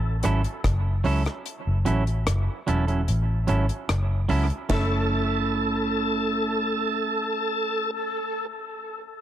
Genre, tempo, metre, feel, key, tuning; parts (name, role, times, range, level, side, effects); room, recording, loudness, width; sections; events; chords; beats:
dub reggae; 74 BPM; 4/4; straight; F# minor; A4 = 440 Hz
vintage muted fingered electric bass; bass; 0.0-7.9 s; E1 to C#2; -24 LUFS; equal
clean electric guitar; accompaniment; 0.2-8.2 s; F#3 to A4; -28 LUFS; right 4 dB; dub echo
deep reggae drum kit; drums; 0.2-4.9 s; hi-hat, kick drum, ride cymbal, rim click, snare drum; -30 LUFS; left 1 dB; dub echo
bright tonewheel organ; melody; 4.7-7.9 s; A4; -27 LUFS; equal; overdrive, chorus vibrato, slow rotary speaker, dub echo
light reverb; -22 LUFS; side -11 dB against mid
0.0-4.7 A section; 4.7-7.9 B section
break 0.0-4.7; kick muted 1.5-4.7
0.0 F#m7
0.65 | 1.46 2.27 3.08 3.89 | 4.70 5.51 6.33 7.14